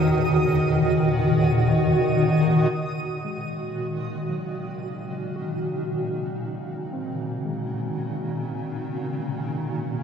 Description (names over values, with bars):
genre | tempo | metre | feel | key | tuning
ambient | 57 BPM | 4/4 | straight | unclear | A4 = 440 Hz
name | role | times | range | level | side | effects
granular cloud pad | sustained chords | 0.0-10.0 s | E2 to F#4 | -22 LUFS | equal | built-in reverb
muted felt-like synth keys | arpeggios | 0.0-10.0 s | Gb3 to Gb4 | -37 LUFS | equal | chorus, tape echo
backwards swelling texture | texture | 0.0-2.8 s | Eb6 | -35 LUFS | right 2 dB | built-in reverb
room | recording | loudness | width
wet plate reverb, RT60 2.9 s | dreamy mix soaked in reverb | -22 LUFS | side -7 dB against mid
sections
0.0-2.7 A section; 2.7-10.0 B section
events
fade-in on synth keys 2.7-10.0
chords
0.0 Emaj7sus2; 2.7 Gbadd9